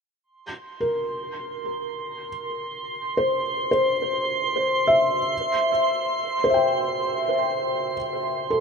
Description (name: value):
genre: ambient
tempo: 71 BPM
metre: 3/4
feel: straight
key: C mixolydian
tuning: A4 = 442 Hz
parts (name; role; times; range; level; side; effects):
- drifting glass-harmonics texture; texture; 0.7-8.6 s; C6; -27 LUFS; right 3 dB; chorus, built-in reverb, shimmer reverb
- felt-muted upright piano; arpeggios; 0.8-8.6 s; A4 to G5; -23 LUFS; left 1 dB; tape echo, shimmer reverb
room: wet huge ambient reverb, RT60 8.9 s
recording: none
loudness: -22 LUFS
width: side -5 dB against mid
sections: 0.3-8.6 A section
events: none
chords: 0.3 C7(no3); 5.3 N.C.